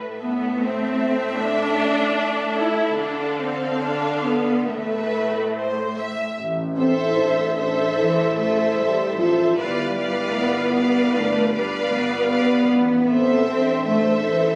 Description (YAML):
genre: cinematic, emotional film score for orchestra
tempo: 76 BPM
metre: 4/4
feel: rubato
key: A minor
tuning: A4 = 440 Hz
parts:
  - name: rich symphonic violin section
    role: second line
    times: 0.0-14.6 s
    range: A4 to F5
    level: -28 LUFS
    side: equal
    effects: none
  - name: rich symphonic cello section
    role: bass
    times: 0.0-14.6 s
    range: A2 to C4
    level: -26 LUFS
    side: equal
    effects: none
  - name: warm symphonic viola section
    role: accompaniment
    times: 0.2-14.6 s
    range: A3 to B4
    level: -26 LUFS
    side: equal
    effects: none
  - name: rich symphonic double bass section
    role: bass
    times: 6.4-14.6 s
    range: G1 to A1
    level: -33 LUFS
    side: equal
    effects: none
  - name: warm symphonic violin section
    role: melody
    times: 6.8-14.6 s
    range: E5 to F5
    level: -29 LUFS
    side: equal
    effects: none
  - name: dark French horn section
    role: sustained chords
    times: 6.8-14.6 s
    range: C4 to F4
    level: -28 LUFS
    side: equal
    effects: none
room: wet recital hall reverb, RT60 1.3 s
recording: recorded on a phone in the room, club reverb, compression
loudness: -21 LUFS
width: mono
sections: 0.0-6.4 A section; 6.4-14.6 A section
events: none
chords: 0.0 Am; 3.0 Dm; 4.7 Amadd9; 6.4 Am; 9.6 G7; 12.7 Am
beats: 0.63 1.41 2.19 | 2.99 3.81 4.68 5.54 | 6.39 7.19 7.98 8.78 | 9.57 10.36 11.15 11.92 | 12.69 13.47 14.25